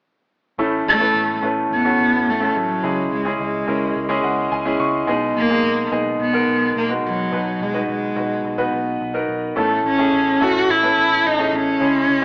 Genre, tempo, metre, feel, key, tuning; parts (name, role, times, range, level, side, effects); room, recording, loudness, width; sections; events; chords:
piano-driven pop; 107 BPM; 4/4; straight; A4 = 438 Hz
bright upright piano; accompaniment; 0.6-12.2 s; A2 to C#6; -22 LUFS; equal
vintage muted picked electric bass; bass; 0.6-12.2 s; A1 to C#2; -38 LUFS; equal
warm cello; melody; 0.9-12.2 s; F#3 to F#4; -21 LUFS; equal
wet large studio reverb, RT60 0.9 s; band playing live in one room, AM radio sound; -19 LUFS; mono
0.6-12.2 A section
upright piano fill 4.0-5.1
0.6 A; 2.8 C#m; 5.1 G#m/B; 7.3 B; 9.6 A